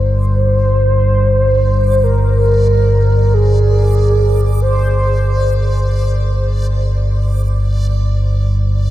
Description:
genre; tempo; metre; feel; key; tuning
dark ambient drone; free time; none; none; unclear; A4 = 440 Hz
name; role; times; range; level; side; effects
mellow horn-like synth lead; melody; 0.0-6.5 s; Ab4 to C5; -18 LUFS; equal; lush chorus, tape echo
deep rumbling drone; drone; 0.0-8.9 s; G1 to G2; -12 LUFS; equal; built-in reverb
backwards swelling texture; texture; 0.0-8.9 s; D5; -32 LUFS; right 1 dB; built-in reverb
room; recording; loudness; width
moderate huge ambient reverb, RT60 8.3 s; none; -11 LUFS; side -14 dB against mid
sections
0.0-8.9 A section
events
none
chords
0.0 Bb69/G (rootless)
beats
free time

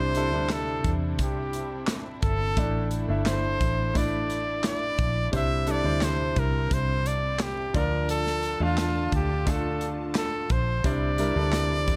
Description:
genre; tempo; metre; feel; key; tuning
piano-driven pop; 87 BPM; 4/4; straight; unclear; A4 = 443 Hz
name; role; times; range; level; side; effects
bright trumpet; melody; 0.0-12.0 s; F4 to E5; -32 LUFS; equal; tape echo
bright concert grand piano; accompaniment; 0.0-12.0 s; A2 to F5; -34 LUFS; equal; none
warm studio string section; sustained chords; 0.0-12.0 s; C3 to A5; -40 LUFS; equal; none
vintage muted fingered electric bass; bass; 0.0-12.0 s; G1 to E2; -31 LUFS; equal; none
modern studio drum kit; drums; 0.1-12.0 s; handclaps, hi-hat, kick drum, snare drum; -32 LUFS; equal; none
room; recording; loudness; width
light reverb, small room ambience; dark, warm production; -26 LUFS; mono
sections
0.0-12.0 A section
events
none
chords
0.0 Cadd9; 2.6 Asus4; 5.3 Cadd9; 7.7 Dm; 10.8 Cadd9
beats
0.50 1.19 1.88 | 2.57 3.26 3.95 4.64 | 5.33 6.02 6.71 7.40 | 8.09 8.78 9.47 10.16 | 10.85 11.54

